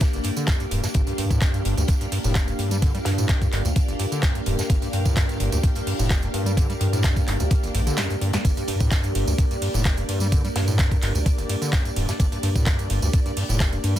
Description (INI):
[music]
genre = acid house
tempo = 128 BPM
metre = 4/4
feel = straight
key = G minor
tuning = A4 = 438 Hz
[part]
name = string machine, full ensemble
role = sustained chords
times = 0.0-14.0 s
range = Bb3 to F5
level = -29 LUFS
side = equal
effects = ensemble chorus, sidechain pumping
[part]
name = overdriven acid bass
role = riff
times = 0.0-14.0 s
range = G1 to G3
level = -27 LUFS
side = equal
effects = tube saturation, sidechain pumping
[part]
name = booming analog drum machine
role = drums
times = 0.0-14.0 s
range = handclaps, hi-hat, ride cymbal, snare drum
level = -30 LUFS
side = right 1 dB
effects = overdrive
[part]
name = electronic kick drum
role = drums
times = 0.0-13.7 s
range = none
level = -21 LUFS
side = equal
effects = none
[part]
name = modern studio drum kit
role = drums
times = 0.0-14.0 s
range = hi-hat, snare drum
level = -36 LUFS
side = left 3 dB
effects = high-pass filter on hats, soft clipping on snare, high-pass filter on snare, high-pass filter on room
[part]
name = tambourine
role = percussion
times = 0.0-14.0 s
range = none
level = -36 LUFS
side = right 5 dB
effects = none
[part]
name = round analog bass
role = bass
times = 0.7-14.0 s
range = D1 to G2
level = -26 LUFS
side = equal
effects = sidechain pumping
[sound]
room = light reverb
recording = dense, heavily limited modern master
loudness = -20 LUFS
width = side -12 dB against mid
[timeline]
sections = 0.0-14.0 A section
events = kick drops out 8.0-8.4; drum fill 8.0-8.4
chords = 0.0 Gm